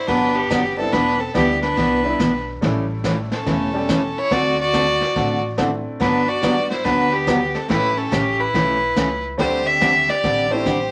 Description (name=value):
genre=country, western swing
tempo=142 BPM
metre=4/4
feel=swing 65% on 8ths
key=G major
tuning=A4 = 440 Hz
part: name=clear fiddle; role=melody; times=0.0-10.9 s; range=G4 to E5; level=-22 LUFS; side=equal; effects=none
part: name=clear fiddle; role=second line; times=0.0-10.9 s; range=B3 to G4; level=-29 LUFS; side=equal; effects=none
part: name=picked steel-string acoustic guitar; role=accompaniment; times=0.1-10.8 s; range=C#3 to A4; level=-25 LUFS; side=equal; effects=none
part: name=upright bass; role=bass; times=0.1-10.9 s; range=E1 to D2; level=-32 LUFS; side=equal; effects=none
part: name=vintage brush drum kit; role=drums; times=0.1-10.9 s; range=brushed snare drum, hi-hat, kick drum, snare drum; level=-29 LUFS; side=equal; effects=none
part: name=bright upright piano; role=accompaniment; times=0.8-10.7 s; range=G3 to G4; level=-28 LUFS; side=equal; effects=none
room=wet small room reverb, RT60 0.6 s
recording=vinyl crackle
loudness=-19 LUFS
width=mono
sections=0.0-10.9 A section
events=none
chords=0.0 Gmaj7; 0.9 Em7; 2.6 A7; 4.3 D7; 6.0 Gmaj7; 7.7 A7; 9.4 D7sus4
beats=0.08 0.50 | 0.93 1.35 1.77 2.20 | 2.62 3.04 3.46 3.89 | 4.31 4.73 5.16 5.58 | 6.00 6.43 6.85 7.27 | 7.70 8.12 8.54 8.97 | 9.39 9.81 10.24 10.66